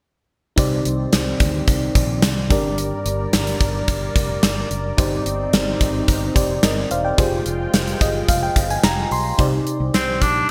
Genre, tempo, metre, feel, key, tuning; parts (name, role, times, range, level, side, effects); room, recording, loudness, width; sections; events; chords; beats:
1980s-style pop; 109 BPM; 4/4; straight; C minor; A4 = 439 Hz
FM electric piano; accompaniment; 0.6-10.5 s; G2 to C6; -26 LUFS; equal
warm analog pad; sustained chords; 0.6-9.4 s; Eb3 to G5; -30 LUFS; equal; chorus
mellow fretless electric bass; bass; 0.6-10.4 s; E1 to D2; -28 LUFS; equal; ensemble chorus
gated 80s drum kit; drums; 0.6-10.3 s; hi-hat, kick drum, snare drum; -22 LUFS; equal
raspy tenor saxophone; melody; 9.9-10.5 s; C4 to D4; -21 LUFS; equal
moderate lush hall reverb, RT60 2.0 s, studio reverb; bright 1980s-style digital production; -19 LUFS; mono
0.6-9.4 A section; 9.4-10.5 B section
FM electric piano fill 7.7-9.4
0.6 Cmadd9; 2.5 Gm; 5.0 Cmadd9/G; 7.2 Fmadd9; 9.4 Cmadd9
| 0.58 1.13 1.68 2.23 | 2.78 3.33 3.88 4.43 | 4.98 5.53 6.08 6.63 | 7.18 7.74 8.29 8.84 | 9.39 9.94 10.49